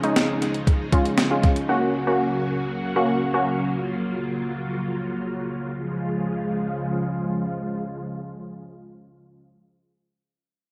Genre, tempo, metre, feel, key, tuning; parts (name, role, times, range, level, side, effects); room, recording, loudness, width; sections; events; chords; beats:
synth-pop; 118 BPM; 4/4; straight; Db major; A4 = 440 Hz
warbly dusty pluck; accompaniment; 0.0-3.6 s; Ab3 to Gb4; -25 LUFS; equal; chorus, low-pass filter
string machine, full ensemble; sustained chords; 0.0-9.5 s; Db3 to Gb4; -29 LUFS; equal; ensemble chorus, low-pass filter
clean 12-bit digital drum machine; drums; 0.0-1.7 s; hi-hat, kick drum, snare drum; -23 LUFS; equal; overdrive, dub echo
wet spring reverb, RT60 1.6 s; echo-heavy mix; -24 LUFS; mono
0.0-5.8 A section; 5.8-9.8 B section
0.0 Db; 1.7 Gb; 5.8 Db
0.16 0.67 1.18 | 1.69 2.20 2.71 3.21 | 3.72 4.23 4.74 5.25 | 5.76 6.26 6.77 7.28 | 7.79 8.30 8.81 9.31